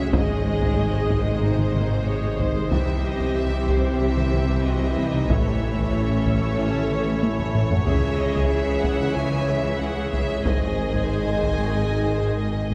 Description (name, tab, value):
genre	cinematic, hybrid orchestral and electronic film score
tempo	93 BPM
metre	4/4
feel	straight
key	unclear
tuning	A4 = 440 Hz
part	rich studio violin section	melody	0.0-12.7 s	B#4 to G#5	-38 LUFS	equal	none
part	rich symphonic violin section	second line	0.0-12.7 s	B#4 to G#5	-34 LUFS	equal	none
part	rich symphonic viola section	accompaniment	0.0-12.7 s	D#3 to A4	-34 LUFS	equal	none
part	clear French horn section	sustained chords	0.0-12.4 s	C#4 to C#5	-32 LUFS	equal	none
part	mellow trombone section	sustained chords	0.0-12.7 s	B#2 to C#4	-37 LUFS	equal	none
part	warbly tape-like pad	sustained chords	0.0-12.7 s	B#2 to D#5	-36 LUFS	equal	none
part	smooth synth bass	riff	0.0-12.7 s	C2 to A3	-31 LUFS	equal	none
part	dark detuned saw bass	bass	0.0-12.7 s	G#1 to C#2	-32 LUFS	equal	none
part	mellow tuba	bass	0.0-12.7 s	G#1 to C#2	-33 LUFS	equal	none
part	rich symphonic cello section	bass	0.0-12.7 s	G#2 to C#3	-33 LUFS	equal	none
part	rich symphonic double bass section	bass	0.0-12.7 s	G#1 to C#2	-33 LUFS	equal	none
part	solo taiko drums	drums	0.1-12.7 s	none	-29 LUFS	equal	none
room	wet concert hall reverb, RT60 2.1 s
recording	recorded in a church or concert hall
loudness	-22 LUFS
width	mono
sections	0.0-12.7 A section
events	drum fill 7.2-7.9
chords	0.1 G#; 2.7 C; 5.3 A; 7.9 C#m; 10.4 G#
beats	| 0.13 0.77 1.42 2.06 | 2.71 3.35 4.00 4.64 | 5.29 5.93 6.58 7.22 | 7.87 8.52 9.16 9.80 | 10.45 11.10 11.74 12.39